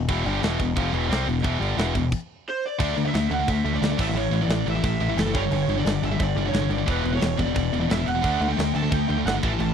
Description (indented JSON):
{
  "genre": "heavy metal",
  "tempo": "176 BPM",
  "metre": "4/4",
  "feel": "straight",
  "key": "unclear",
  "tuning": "A4 = 440 Hz",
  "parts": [
    { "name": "heavy high-gain guitar", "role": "riff", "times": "0.0-9.7 s", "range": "E2 to D4", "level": "-27 LUFS", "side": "left 10 dB", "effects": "distortion" },
    { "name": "growling picked electric bass", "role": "bass", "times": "0.0-9.7 s", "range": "E1 to D2", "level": "-27 LUFS", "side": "right 1 dB", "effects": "overdrive" },
    { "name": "scooped high-gain guitar", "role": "riff", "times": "0.1-9.7 s", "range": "E2 to D4", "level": "-28 LUFS", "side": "right 11 dB", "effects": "distortion" },
    { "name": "tight metal drum kit", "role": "drums", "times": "0.1-9.7 s", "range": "crash cymbal, kick drum, snare drum", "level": "-29 LUFS", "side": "right 1 dB", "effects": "none" },
    { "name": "lead guitar through a small cranked amp", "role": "melody", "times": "2.5-9.7 s", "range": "A4 to A5", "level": "-28 LUFS", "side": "right 2 dB", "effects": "overdrive, slapback echo" }
  ],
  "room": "little or no reverb",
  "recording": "dry, close 1970s-style studio recording",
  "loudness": "-21 LUFS",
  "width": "side -7 dB against mid",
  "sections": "0.0-2.8 A section; 2.8-9.7 B section",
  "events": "stop 2.1-2.8",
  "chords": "0.0 Em; 2.1 N.C.; 2.8 D5; 4.0 A5; 5.4 G5; 6.9 E5; 8.2 D5"
}